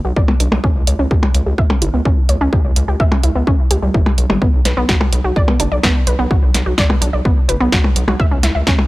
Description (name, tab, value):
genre	melodic techno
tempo	127 BPM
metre	4/4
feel	straight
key	B minor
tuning	A4 = 440 Hz
part	wide unison pluck	arpeggios	0.0-8.7 s	G3 to E5	-20 LUFS	right 1 dB	sidechain pumping, tape echo
part	gritty driven synth bass	bass	0.0-8.7 s	F#1 to C#2	-18 LUFS	equal	sidechain pumping
part	electronic kick drum	drums	0.2-8.8 s	none	-15 LUFS	equal	none
part	techno drum kit	drums	0.3-8.9 s	hi-hat, percussion blips, snare drum	-18 LUFS	equal	sidechain pumping on hats, sidechain pumping on perc
room	digital ambience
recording	dry, gritty hardware recording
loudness	-12 LUFS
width	side -19 dB against mid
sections	0.0-8.9 A section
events	filter sweep on synth arpeggio sound 0.0-8.9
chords	0.0 Bm; 0.6 C#(b5, no3); 4.4 B5; 8.2 C#m